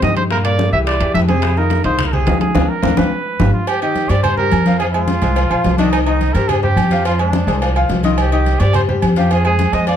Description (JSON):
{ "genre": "latin, salsa", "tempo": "213 BPM", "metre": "4/4", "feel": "straight", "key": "C minor", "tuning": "A4 = 440 Hz", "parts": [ { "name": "warm trumpet", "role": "melody", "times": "0.0-10.0 s", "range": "D4 to E5", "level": "-20 LUFS", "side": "right 4 dB", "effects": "none" }, { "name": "bright concert grand piano", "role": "accompaniment", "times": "0.0-10.0 s", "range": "Bb2 to F5", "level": "-20 LUFS", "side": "left 4 dB", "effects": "none" }, { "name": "upright bass", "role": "bass", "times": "0.0-10.0 s", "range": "G1 to G2", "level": "-17 LUFS", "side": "equal", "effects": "none" }, { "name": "bongos and cowbell", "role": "percussion", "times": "0.0-10.0 s", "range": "none", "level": "-25 LUFS", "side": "left 4 dB", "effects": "none" }, { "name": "congas", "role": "percussion", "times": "0.0-10.0 s", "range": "none", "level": "-21 LUFS", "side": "left 1 dB", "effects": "none" }, { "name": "timbales and agogo bells", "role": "percussion", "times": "0.0-10.0 s", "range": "none", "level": "-24 LUFS", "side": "right 5 dB", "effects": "none" } ], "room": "light reverb", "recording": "dark, warm production", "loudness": "-13 LUFS", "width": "side -9 dB against mid", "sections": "0.0-3.7 A section; 3.7-10.0 B section", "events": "drum fill 2.5-3.7; band accent 2.5-3.7", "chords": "0.3 Gm; 0.9 C; 1.4 Fm7; 2.5 Dm7b5; 3.1 G7; 3.7 Cm; 4.8 Fm; 5.9 Cm; 7.0 Fm; 8.2 Cm; 9.3 Fm", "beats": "0.02 | 0.30 0.58 0.86 1.15 | 1.43 1.71 1.99 2.27 | 2.55 2.83 3.11 3.39 | 3.67 3.95 4.23 4.51 | 4.80 5.08 5.36 5.64 | 5.92 6.20 6.49 6.77 | 7.05 7.33 7.61 7.90 | 8.18 8.46 8.74 9.02 | 9.31 9.59 9.87" }